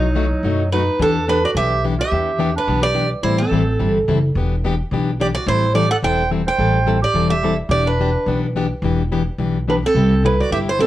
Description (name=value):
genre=acoustic string swing (jazz manouche)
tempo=214 BPM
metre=4/4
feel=swing 56% on 8ths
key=E minor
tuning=A4 = 439 Hz
part: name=picked steel-string acoustic guitar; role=melody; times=0.0-10.9 s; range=D#4 to G5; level=-20 LUFS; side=right 2 dB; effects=none
part: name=growling clarinet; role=second line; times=0.0-10.9 s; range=F#3 to C5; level=-24 LUFS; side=right 3 dB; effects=none
part: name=picked plugged-in steel-string acoustic guitar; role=accompaniment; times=0.0-10.9 s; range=B2 to A4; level=-21 LUFS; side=left 4 dB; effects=none
part: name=upright bass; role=bass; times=0.0-10.9 s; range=E1 to F#2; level=-20 LUFS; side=equal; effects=none
room=moderate studio reverb, RT60 0.7 s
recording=worn, warbling old tape, cassette tape, warbly pitch drift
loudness=-16 LUFS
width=side -14 dB against mid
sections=1.0-10.9 A section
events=none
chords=0.0 B7; 1.0 Em7; 3.2 Am7; 4.3 Em7; 5.5 Am7; 7.7 Em7; 9.9 Cmaj7